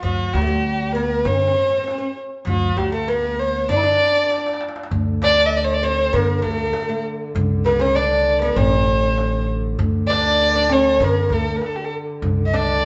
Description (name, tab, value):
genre	Arabic maqam ensemble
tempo	99 BPM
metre	4/4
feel	straight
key	D maqam huzam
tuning	A4 = 440 Hz
part	dark violin	melody	0.0-12.8 s	F4+46c to E5-45c	-21 LUFS	equal	none
part	oud	second line	0.0-12.8 s	F#3-50c to E4-50c	-28 LUFS	equal	none
part	upright bass	bass	0.0-12.8 s	A1 to D3	-26 LUFS	equal	none
part	darbuka	percussion	0.0-12.8 s	none	-27 LUFS	equal	none
part	mellow duduk	drone	4.9-12.8 s	D3	-33 LUFS	equal	none
room	wet large studio reverb, RT60 1.2 s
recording	band playing live in one room, nothing above 7.9 kHz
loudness	-19 LUFS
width	mono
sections	0.0-4.9 A section; 4.9-12.8 B section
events	drum fill 4.3-4.9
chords	none